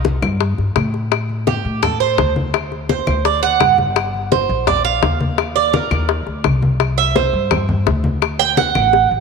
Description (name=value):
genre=latin, Cuban son and guajira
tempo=169 BPM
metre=4/4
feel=straight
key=unclear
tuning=A4 = 440 Hz
part: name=upright bass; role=bass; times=0.0-9.2 s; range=G1 to A2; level=-20 LUFS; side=left 1 dB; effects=none
part: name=bongos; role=percussion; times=0.0-9.0 s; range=none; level=-21 LUFS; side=left 15 dB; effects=none
part: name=congas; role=percussion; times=0.0-9.2 s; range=none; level=-23 LUFS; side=left 2 dB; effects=none
part: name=claves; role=percussion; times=0.2-8.9 s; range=none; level=-29 LUFS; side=left 14 dB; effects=none
part: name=Cuban tres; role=arpeggios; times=1.5-9.1 s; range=G4 to G5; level=-17 LUFS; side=right 10 dB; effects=none
room=moderate plate reverb, RT60 3.0 s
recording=1960s-style stereo with parts hard left and right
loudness=-14 LUFS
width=side -4 dB against mid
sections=0.0-9.2 A section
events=Cuban tres solo 0.0-9.2; drum fill 8.9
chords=0.0 C5; 1.1 D7sus4; 2.5 D; 4.0 Gm; 5.4 Eb5; 6.8 C5; 8.2 D